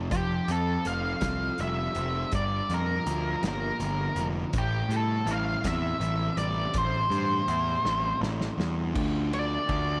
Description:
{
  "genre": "indie rock",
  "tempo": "54 BPM (dotted quarters)",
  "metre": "6/8",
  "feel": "straight",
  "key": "unclear",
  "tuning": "A4 = 440 Hz",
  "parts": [
    { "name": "fuzz guitar", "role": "riff", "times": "0.0-10.0 s", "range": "G2 to A4", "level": "-35 LUFS", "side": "equal", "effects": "distortion" },
    { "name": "fuzz picked electric bass", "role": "bass", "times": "0.0-10.0 s", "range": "F1 to A2", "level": "-33 LUFS", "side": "equal", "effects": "overdrive" },
    { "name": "octave-fuzz lead guitar", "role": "melody", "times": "0.1-10.0 s", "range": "G4 to F5", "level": "-33 LUFS", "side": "equal", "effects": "distortion, tape echo" },
    { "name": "loose indie drum kit", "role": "drums", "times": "0.1-9.9 s", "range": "crash cymbal, hi-hat, kick drum, ride cymbal, snare drum", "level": "-37 LUFS", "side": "equal", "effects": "none" }
  ],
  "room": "light reverb, studio ambience",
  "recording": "none",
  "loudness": "-28 LUFS",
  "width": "mono",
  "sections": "0.1-8.9 A section; 8.9-10.0 B section",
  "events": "drum fill 7.8-8.9",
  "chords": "0.1 Fadd9; 2.3 Gm7; 4.5 Am7; 8.9 Dm"
}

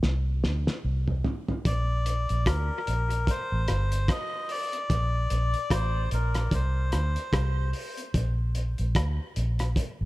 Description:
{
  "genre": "dub reggae",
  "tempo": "74 BPM",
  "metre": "4/4",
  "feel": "swing 58% on 16ths",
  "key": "Bb major",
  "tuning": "A4 = 440 Hz",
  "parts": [
    { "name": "vintage muted fingered electric bass", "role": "bass", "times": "0.0-10.1 s", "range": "G1 to D2", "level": "-26 LUFS", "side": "equal", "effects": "none" },
    { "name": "cloth-damped thuddy drum kit", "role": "drums", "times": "0.0-10.0 s", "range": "hi-hat, kick drum, rim click, snare drum, toms", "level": "-29 LUFS", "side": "equal", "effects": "none" },
    { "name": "melodica", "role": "melody", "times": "1.7-7.7 s", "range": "Bb4 to Eb5", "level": "-32 LUFS", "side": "left 2 dB", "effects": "dub echo" }
  ],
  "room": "studio reverb",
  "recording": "echo-heavy mix",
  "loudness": "-25 LUFS",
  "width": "side -18 dB against mid",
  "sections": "0.0-1.6 A section; 1.6-10.1 B section",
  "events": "drum fill 0.0-1.6",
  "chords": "0.0 Csus2; 1.6 Bb; 3.3 C5; 4.9 Bb; 6.5 Csus2; 8.1 Bb"
}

